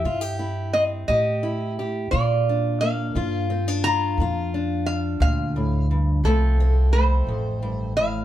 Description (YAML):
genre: acoustic country blues, solo or duo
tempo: 58 BPM (dotted quarters)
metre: 12/8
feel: straight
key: unclear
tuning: A4 = 438 Hz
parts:
  - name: lap resonator guitar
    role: melody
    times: 0.0-8.2 s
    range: A4 to Bb5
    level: -24 LUFS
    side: right 1 dB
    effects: none
  - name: fingerpicked steel-string acoustic guitar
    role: accompaniment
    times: 0.0-8.2 s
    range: F2 to G4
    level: -27 LUFS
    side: left 1 dB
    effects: none
  - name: upright bass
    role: bass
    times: 0.0-8.2 s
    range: A1 to Bb2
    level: -23 LUFS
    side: equal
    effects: none
room: moderate studio reverb, RT60 0.6 s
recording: heard from further back in the room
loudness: -20 LUFS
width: side -12 dB against mid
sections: 0.0-8.2 A section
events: none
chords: 0.0 C; 2.1 Bb; 6.2 F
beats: 0.04 1.07 | 2.11 3.14 4.17 5.21 | 6.24 7.27